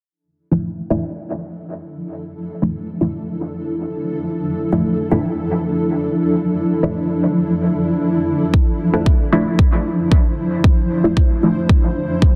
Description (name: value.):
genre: dub techno.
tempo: 114 BPM.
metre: 4/4.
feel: straight.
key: D minor.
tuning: A4 = 440 Hz.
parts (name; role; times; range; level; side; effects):
granular cloud pad; sustained chords; 1.5-12.4 s; F3 to C5; -22 LUFS; equal; built-in reverb, sidechain pumping.
filtered dub chord stab; stabs; 0.5-12.4 s; F3 to E4; -23 LUFS; equal; phaser, sidechain pumping, dub echo.
electronic kick drum; drums; 8.5-12.3 s; none; -15 LUFS; equal; none.
room: moderate lush hall reverb, RT60 2.3 s.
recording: dense, heavily limited modern master.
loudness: -18 LUFS.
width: mono.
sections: 0.1-12.4 A section.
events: filter sweep on ambient pad 0.1-12.4.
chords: 0.1 Dmadd9.